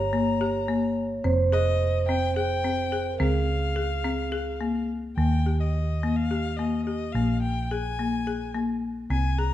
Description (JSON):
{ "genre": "contemporary instrumental, chamber music in an uneven meter", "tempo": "214 BPM (eighths)", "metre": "7/8", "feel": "straight", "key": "F minor", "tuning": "A4 = 440 Hz", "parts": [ { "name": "rich violin", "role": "melody", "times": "0.0-9.5 s", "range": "Eb5 to Bb5", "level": "-33 LUFS", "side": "left 5 dB", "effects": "none" }, { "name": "vibraphone with soft mallets", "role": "second line", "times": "0.0-4.9 s", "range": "Ab4 to Db5", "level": "-28 LUFS", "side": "right 5 dB", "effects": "none" }, { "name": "folk marimba with hard mallets", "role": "arpeggios", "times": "0.0-9.5 s", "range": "Bb3 to Ab4", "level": "-28 LUFS", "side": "left 4 dB", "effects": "none" }, { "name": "hollow-body short-scale fingered electric bass", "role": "bass", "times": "0.0-9.5 s", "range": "F1 to Eb2", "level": "-27 LUFS", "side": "right 1 dB", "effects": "none" } ], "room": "light reverb", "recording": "dark, warm production", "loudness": "-23 LUFS", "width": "side -12 dB against mid", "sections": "0.0-5.2 A section; 5.2-9.5 B section", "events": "none", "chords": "0.0 Gdim; 1.2 Fm9; 3.2 Dbmaj7; 5.2 Eb; 7.2 Fmadd11/Bb (rootless)" }